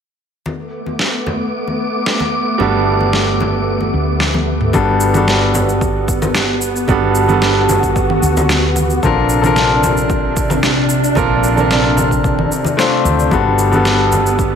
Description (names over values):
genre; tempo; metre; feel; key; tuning
sunset chillout; 112 BPM; 4/4; straight; G major; A4 = 440 Hz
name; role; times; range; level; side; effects
soft string machine; sustained chords; 0.5-14.6 s; C3 to F#4; -19 LUFS; equal; ensemble chorus
congas; percussion; 0.5-14.2 s; none; -23 LUFS; left 2 dB; none
wind-like tuned noise texture; texture; 1.1-4.8 s; D6; -25 LUFS; left 2 dB; built-in reverb
smooth R&B drum kit; drums; 1.0-14.5 s; cabasa, congas, snare drum, toms; -19 LUFS; right 1 dB; small room ambience
bright concert grand piano; accompaniment; 2.6-14.6 s; G3 to C5; -16 LUFS; moving between left 5 dB and right 7 dB; auto-pan, ping-pong delay
woody fretless electric bass; bass; 2.6-14.6 s; G1 to D2; -18 LUFS; equal; none
electronic kick drum; drums; 4.7-14.5 s; none; -21 LUFS; equal; small room ambience
room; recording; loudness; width
moderate lush hall reverb, RT60 1.7 s; none; -12 LUFS; side -7 dB against mid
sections
0.5-4.7 A section; 4.7-14.6 B section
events
drum fill 4.2-4.7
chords
0.5 Gmaj9; 9.0 Bbmaj9; 13.3 Gmaj9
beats
| 0.46 0.99 1.53 2.06 | 2.60 3.14 3.67 4.21 | 4.74 5.28 5.82 6.35 | 6.89 7.42 7.96 8.49 | 9.03 9.56 10.10 10.64 | 11.17 11.71 12.24 12.78 | 13.31 13.85 14.39